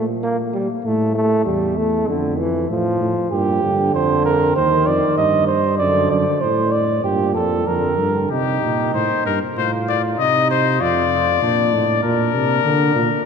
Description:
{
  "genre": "classical, imitative canzona for brass ensemble",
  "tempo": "97 BPM",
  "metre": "4/4",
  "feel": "straight",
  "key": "G minor",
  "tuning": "A4 = 440 Hz",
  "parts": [
    { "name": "warm trombone", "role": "accompaniment", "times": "0.0-8.3 s", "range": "A2 to Bb3", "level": "-21 LUFS", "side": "equal", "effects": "none" },
    { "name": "dark bass trombone", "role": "bass", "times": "0.0-13.1 s", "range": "Eb2 to D3", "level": "-22 LUFS", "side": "right 1 dB", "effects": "none" },
    { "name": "mellow flugelhorn", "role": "second line", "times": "3.3-13.2 s", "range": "D4 to Eb5", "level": "-20 LUFS", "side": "right 3 dB", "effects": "none" },
    { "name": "clear trumpet", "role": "melody", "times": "8.3-13.2 s", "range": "G4 to Eb5", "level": "-18 LUFS", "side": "left 11 dB", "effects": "none" }
  ],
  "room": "wet cathedral reverb, RT60 4.6 s",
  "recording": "none",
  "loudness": "-16 LUFS",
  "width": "side -6 dB against mid",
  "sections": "0.0-8.3 A section; 8.3-13.3 B section",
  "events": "none",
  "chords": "0.0 Gm/Bb; 0.8 A5; 2.1 Dm/F; 3.3 Gm; 4.6 Cm/Eb; 5.8 D/F#; 7.1 Gm; 8.3 Cm; 9.6 Adim; 10.8 Dm/F; 12.0 Bb",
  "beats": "0.23 | 0.85 1.47 2.09 2.70 | 3.32 3.95 4.56 5.18 | 5.81 6.43 7.05 7.68 | 8.31 8.94 9.57 10.19 | 10.81 11.42 12.04 12.65"
}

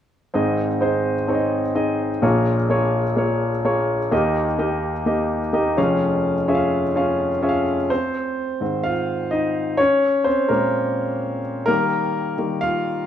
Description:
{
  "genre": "pop",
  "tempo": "127 BPM",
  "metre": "4/4",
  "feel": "straight",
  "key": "Ab major",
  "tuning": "A4 = 439 Hz",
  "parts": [
    { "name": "warm concert grand piano", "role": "solo", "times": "0.3-13.1 s", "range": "F1 to F5", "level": "-18 LUFS", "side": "equal", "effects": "none" }
  ],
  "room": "light reverb, small room ambience",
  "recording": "rough home demo mix, studio reverb",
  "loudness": "-18 LUFS",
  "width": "side -9 dB against mid",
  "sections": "0.3-7.9 A section; 7.9-13.1 B section",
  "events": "grand piano solo 7.9-13.1",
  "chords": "0.3 Ab; 2.2 Bbm7; 4.1 Eb; 5.8 Db/F; 7.9 Ab; 9.8 Bbm7; 11.7 Eb",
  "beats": "| 0.34 0.81 1.28 1.76 | 2.23 2.70 3.17 3.65 | 4.12 4.59 5.07 5.54 | 6.01 6.48 6.96 7.43 | 7.90 8.37 8.85 9.32 | 9.79 10.26 10.74 11.21 | 11.68 12.15 12.63"
}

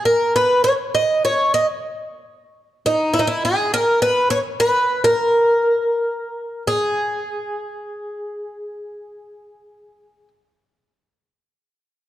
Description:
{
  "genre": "fado",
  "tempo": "43-70 BPM",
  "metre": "4/4",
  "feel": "rubato",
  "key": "G# minor",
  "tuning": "A4 = 441 Hz",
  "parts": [
    { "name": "picked twelve-string acoustic guitar", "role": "solo", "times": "0.0-10.3 s", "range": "D#4 to D#5", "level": "-17 LUFS", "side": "equal", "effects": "none" }
  ],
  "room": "moderate scoring stage reverb, RT60 1.8 s",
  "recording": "dark, warm production",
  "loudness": "-16 LUFS",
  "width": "side -13 dB against mid",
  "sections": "0.0-11.7 A section",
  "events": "slowing down 3.3-11.7",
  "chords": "none",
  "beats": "0.64 1.52 2.40 | 3.27 4.13 5.01 5.92 | 6.89 7.93 9.05"
}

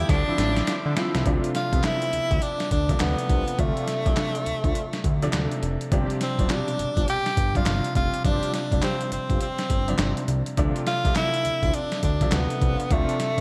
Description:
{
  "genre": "R&B, new jack swing",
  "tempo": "103 BPM",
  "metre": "4/4",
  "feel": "swing 62% on 16ths",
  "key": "D dorian",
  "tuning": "A4 = 441 Hz",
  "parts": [
    { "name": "bright tenor saxophone", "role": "melody", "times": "0.0-13.4 s", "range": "A3 to G4", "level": "-29 LUFS", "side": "equal", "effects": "none" },
    { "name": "warm baby grand piano", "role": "accompaniment", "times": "0.0-13.4 s", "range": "B2 to G4", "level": "-32 LUFS", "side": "equal", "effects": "none" },
    { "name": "pipe organ, trumpet", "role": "sustained chords", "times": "0.0-1.2 s", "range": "F3 to D6", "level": "-38 LUFS", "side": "equal", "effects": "none" },
    { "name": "mellow synth brass", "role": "stabs", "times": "0.0-13.2 s", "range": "C4 to G4", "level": "-38 LUFS", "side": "equal", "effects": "chorus, tremolo, phaser" },
    { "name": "fat analog bass", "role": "bass", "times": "0.0-13.4 s", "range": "F1 to D3", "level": "-29 LUFS", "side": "equal", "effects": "none" },
    { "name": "boom bap sampler-style drum kit", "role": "drums", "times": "0.1-13.4 s", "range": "handclaps, hi-hat, kick drum, snare drum", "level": "-28 LUFS", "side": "equal", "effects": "gated reverb" }
  ],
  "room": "moderate plate reverb, RT60 1.8 s",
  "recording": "bright 1980s-style digital production",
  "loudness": "-24 LUFS",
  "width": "mono",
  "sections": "0.0-1.3 A section; 1.3-13.4 B section",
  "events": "drum fill 0.1-1.3",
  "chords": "0.1 Dm9; 1.3 Dm7; 5.9 G7sus4; 10.6 Dm7",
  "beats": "0.09 0.67 | 1.25 1.84 2.42 3.00 | 3.58 4.17 4.75 5.33 | 5.92 6.50 7.08 7.66 | 8.24 8.83 9.41 9.99 | 10.57 11.16 11.74 12.32 | 12.90"
}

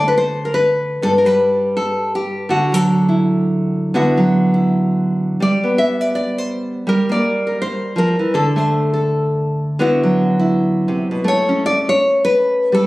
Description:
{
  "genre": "solo jazz",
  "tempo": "164 BPM",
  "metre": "4/4",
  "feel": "swing 64% on 8ths",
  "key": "D mixolydian",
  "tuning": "A4 = 440 Hz",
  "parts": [
    { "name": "nylon-string guitar", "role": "solo", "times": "0.0-12.9 s", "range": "G2 to E5", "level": "-14 LUFS", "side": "equal", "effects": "none" }
  ],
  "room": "moderate studio reverb, RT60 0.5 s",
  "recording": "recorded on a phone in the room, studio reverb, compression",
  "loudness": "-14 LUFS",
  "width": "side -18 dB against mid",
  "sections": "0.0-12.9 A section",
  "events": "none",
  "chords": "0.0 D5; 1.0 N.C.; 2.5 D69; 5.4 G; 6.9 Gm7; 8.3 D13; 11.3 Aadd9",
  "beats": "0.28 0.65 | 1.01 1.38 1.75 2.11 | 2.48 2.84 3.21 3.58 | 3.94 4.31 4.67 5.04 | 5.40 5.77 6.13 6.50 | 6.87 7.23 7.60 7.96 | 8.33 8.70 9.06 9.43 | 9.79 10.16 10.52 10.89 | 11.26 11.62 11.99 12.36 | 12.72"
}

